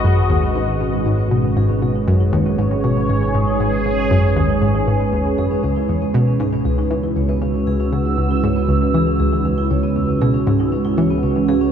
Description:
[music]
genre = ambient, sequencer-driven space music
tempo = 118 BPM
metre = 4/4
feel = straight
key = C# minor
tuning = A4 = 441 Hz
[part]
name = sweeping resonant pad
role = sustained chords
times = 0.0-11.7 s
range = G#3 to E6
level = -19 LUFS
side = right 3 dB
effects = chorus
[part]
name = vibraphone with medium mallets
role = arpeggios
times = 0.0-11.7 s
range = B3 to C#5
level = -26 LUFS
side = moving between left 6 dB and right 3 dB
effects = auto-pan, analog delay
[part]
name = analog pluck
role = riff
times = 0.0-11.6 s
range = C#2 to E3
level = -19 LUFS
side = left 1 dB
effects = chorus, vintage 12-bit sampler grit, analog delay
[part]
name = fat analog bass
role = bass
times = 0.0-11.7 s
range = G#1 to C#2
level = -24 LUFS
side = left 1 dB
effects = none
[sound]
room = wet huge ambient reverb, RT60 8.5 s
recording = dark, warm production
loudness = -15 LUFS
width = side -8 dB against mid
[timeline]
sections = 0.0-11.7 A section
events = fade-in on vibraphone 0.0-11.7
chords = 0.0 G#m; 5.6 C#m

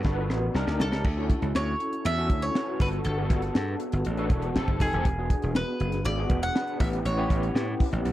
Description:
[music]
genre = polished 1980s jazz-funk pop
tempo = 120 BPM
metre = 4/4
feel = straight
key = unclear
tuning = A4 = 441 Hz
[part]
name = bowl-back mandolin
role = melody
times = 0.0-7.8 s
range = G#4 to F#5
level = -32 LUFS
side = right 1 dB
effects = slapback echo
[part]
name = overdriven tine electric piano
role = accompaniment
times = 0.0-8.1 s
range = B3 to B4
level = -30 LUFS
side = left 1 dB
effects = medium tremolo, ensemble chorus
[part]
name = slap bass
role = bass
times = 0.0-8.1 s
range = Eb1 to A2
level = -28 LUFS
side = equal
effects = none
[part]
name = tight funk drum kit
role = drums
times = 0.0-8.1 s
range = crash cymbal, hi-hat, kick drum, snare drum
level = -26 LUFS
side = equal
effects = none
[sound]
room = studio reverb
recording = dry, close 1970s-style studio recording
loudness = -24 LUFS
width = side -14 dB against mid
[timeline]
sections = 0.0-1.0 A section; 1.0-8.1 B section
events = drum fill 0.0-1.0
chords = 0.0 Gmaj9; 0.5 Cm9; 1.0 Dmaj9; 2.8 Gmaj9; 4.6 F9; 5.1 E7; 6.8 A9

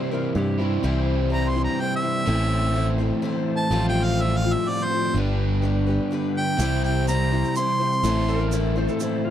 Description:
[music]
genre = folk rock and heartland rock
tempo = 125 BPM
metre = 3/4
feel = straight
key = C major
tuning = A4 = 440 Hz
[part]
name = electric slide guitar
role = second line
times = 0.0-0.8, 8.3-9.3 s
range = E4 to C5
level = -30 LUFS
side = equal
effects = none
[part]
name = picked steel-string acoustic guitar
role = accompaniment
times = 0.0-9.3 s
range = A2 to C5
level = -29 LUFS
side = left 6 dB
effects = none
[part]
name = crunchy overdriven guitar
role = riff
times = 0.0-9.3 s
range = G2 to A4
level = -26 LUFS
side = right 1 dB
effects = none
[part]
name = picked electric bass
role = bass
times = 0.4-8.9 s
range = G1 to G2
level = -23 LUFS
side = right 1 dB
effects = none
[part]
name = bright tonewheel organ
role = sustained chords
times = 0.8-9.3 s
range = D4 to A5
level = -38 LUFS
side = right 2 dB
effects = slow rotary speaker, chorus vibrato
[part]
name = clear harmonica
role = melody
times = 1.3-8.5 s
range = C5 to C6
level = -25 LUFS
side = right 1 dB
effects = none
[part]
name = egg shaker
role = percussion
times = 6.6-9.1 s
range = none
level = -37 LUFS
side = right 9 dB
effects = none
[sound]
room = little or no reverb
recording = dry, close 1970s-style studio recording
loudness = -20 LUFS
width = side -10 dB against mid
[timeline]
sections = 0.8-9.3 A section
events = harmonica solo 0.8-9.3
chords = 0.0 C; 2.3 Am; 3.7 Fadd9/A; 5.2 G; 6.6 C; 8.0 Am

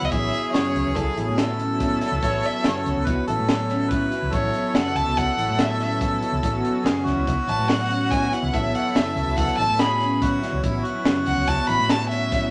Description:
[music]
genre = progressive instrumental, band music in an uneven meter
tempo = 143 BPM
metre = 5/4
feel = straight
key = A major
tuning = A4 = 442 Hz
[part]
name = rich violin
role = melody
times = 0.0-12.5 s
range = A4 to B5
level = -27 LUFS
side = equal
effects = none
[part]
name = clear harmonica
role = second line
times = 0.0-12.5 s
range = E4 to B4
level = -30 LUFS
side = equal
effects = none
[part]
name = lush unison pad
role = accompaniment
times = 0.0-12.5 s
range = F#3 to F#4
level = -31 LUFS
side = equal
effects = chorus
[part]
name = mellow electric guitar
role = arpeggios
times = 0.0-12.5 s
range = C#4 to E4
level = -32 LUFS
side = equal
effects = phaser
[part]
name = hollow-body short-scale fingered electric bass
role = bass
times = 0.0-12.5 s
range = F#1 to A2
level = -30 LUFS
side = equal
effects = none
[part]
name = crisp fusion drum kit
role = drums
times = 0.1-12.4 s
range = hi-hat, kick drum, snare drum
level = -28 LUFS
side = equal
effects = none
[sound]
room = wet club reverb, RT60 0.5 s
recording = none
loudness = -22 LUFS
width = mono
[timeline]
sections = 0.0-12.5 A section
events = violin solo 0.0-12.5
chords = 0.0 A6

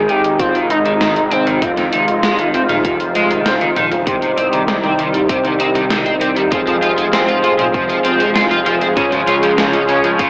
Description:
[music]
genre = synthwave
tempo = 98 BPM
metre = 4/4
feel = straight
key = F minor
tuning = A4 = 440 Hz
[part]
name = expressive portamento lead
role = melody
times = 0.0-3.5 s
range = C4 to Ab4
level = -18 LUFS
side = equal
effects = wide subtle chorus, cassette tape, tape echo
[part]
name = warm analog pad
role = sustained chords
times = 0.0-10.3 s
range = C3 to Ab4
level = -18 LUFS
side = equal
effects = chorus, sidechain pumping, cassette tape
[part]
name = wide detuned saw bass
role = bass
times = 0.0-10.3 s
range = Eb1 to F2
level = -22 LUFS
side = equal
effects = chorus, tube saturation
[part]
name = electric guitar at the edge of break-up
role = arpeggios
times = 0.1-10.3 s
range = Eb3 to F4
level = -18 LUFS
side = equal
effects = analog chorus, low-pass filter, cassette tape, tape echo
[part]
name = gated 80s digital drum machine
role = drums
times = 0.1-10.3 s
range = hi-hat, snare drum, toms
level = -22 LUFS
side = equal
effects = gated reverb, gated reverb snare, cassette tape
[part]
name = electronic kick drum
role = drums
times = 0.4-10.3 s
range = none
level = -24 LUFS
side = equal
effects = cassette tape
[part]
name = cranked stack guitar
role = riff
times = 4.1-10.3 s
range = C3 to F4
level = -20 LUFS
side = equal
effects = overdrive, ensemble chorus, low-pass filter, cassette tape, tape echo
[part]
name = analog synth brass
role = stabs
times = 4.1-10.3 s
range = C4 to Db5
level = -20 LUFS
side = equal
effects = chorus, cassette tape, tape echo
[sound]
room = wet spring reverb, RT60 1.7 s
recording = home recording on cassette, AM radio sound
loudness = -12 LUFS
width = side -30 dB against mid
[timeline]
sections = 0.0-4.1 A section; 4.1-10.3 B section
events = kick drops out 3.5-4.1; drum fill 3.6-4.1; filter sweep on clean electric guitar 4.1-10.3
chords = 0.0 Ab; 1.6 Fm7; 4.1 Cm; 6.5 Fm; 9.0 Db

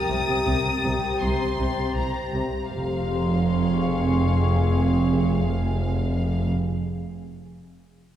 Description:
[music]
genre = cinematic, suspense film score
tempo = 80 BPM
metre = 4/4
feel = straight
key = F minor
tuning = A4 = 440 Hz
[part]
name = bright symphonic violin section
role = melody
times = 0.0-6.5 s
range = F5 to Eb6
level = -32 LUFS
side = left 4 dB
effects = none
[part]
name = ethereal airy pad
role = sustained chords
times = 0.0-6.5 s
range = C4 to Bb5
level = -28 LUFS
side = equal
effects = ensemble chorus, built-in reverb, phaser
[part]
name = warm symphonic violin section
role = texture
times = 0.0-5.3 s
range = G5 to A6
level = -33 LUFS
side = left 5 dB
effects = none
[part]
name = clear symphonic double bass section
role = bass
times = 0.1-6.5 s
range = F1 to C2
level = -26 LUFS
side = right 1 dB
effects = none
[part]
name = rich symphonic cello section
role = bass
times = 0.1-6.5 s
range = F2 to C3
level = -26 LUFS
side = right 1 dB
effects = none
[sound]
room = wet concert hall reverb, RT60 2.4 s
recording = heard from further back in the room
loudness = -21 LUFS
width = side -11 dB against mid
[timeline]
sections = 0.0-2.7 A section; 2.7-5.7 B section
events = none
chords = 0.0 Cm7; 2.7 Fm

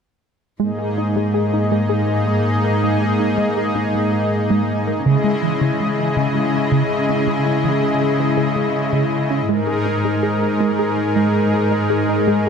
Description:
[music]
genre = cinematic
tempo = 54 BPM (dotted quarters)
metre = 6/8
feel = straight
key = unclear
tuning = A4 = 442 Hz
[part]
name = brassy analog pad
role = sustained chords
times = 0.6-12.5 s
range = G#3 to D#5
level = -19 LUFS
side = left 1 dB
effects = chorus
[part]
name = tight sequenced synth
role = arpeggios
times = 0.6-12.5 s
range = C#3 to A#4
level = -22 LUFS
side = right 1 dB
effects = chorus, phaser, digital delay
[part]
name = rich symphonic cello section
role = bass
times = 0.6-12.5 s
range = G#2 to C#3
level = -21 LUFS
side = equal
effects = none
[sound]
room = light reverb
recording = none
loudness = -16 LUFS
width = side -6 dB against mid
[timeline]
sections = 0.6-12.5 A section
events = build-up 0.6-12.5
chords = 0.6 G#sus2; 5.0 C#madd9; 9.5 G#sus2

